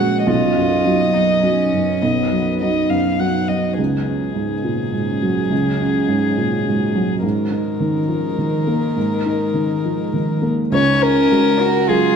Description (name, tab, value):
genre	neoclassical piano and strings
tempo	104 BPM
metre	3/4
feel	rubato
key	unclear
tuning	A4 = 440 Hz
part	dark violin	melody	0.0-12.2 s	G#4 to F#5	-21 LUFS	left 4 dB	none
part	warm cello	second line	0.0-12.2 s	D#3 to F#4	-24 LUFS	right 5 dB	none
part	felt-muted upright piano	accompaniment	0.0-12.2 s	A#1 to G#4	-18 LUFS	right 1 dB	none
part	deep dark ambient pad	sustained chords	0.0-12.2 s	F#3 to A#4	-26 LUFS	equal	chorus, built-in reverb
room	wet recital hall reverb, RT60 1.7 s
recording	dark, warm production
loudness	-16 LUFS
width	side -6 dB against mid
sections	0.0-3.8 A section; 3.8-10.7 B section; 10.7-12.2 C section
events	none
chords	0.3 B; 3.8 C#sus4; 7.2 G#sus2; 10.7 C#sus4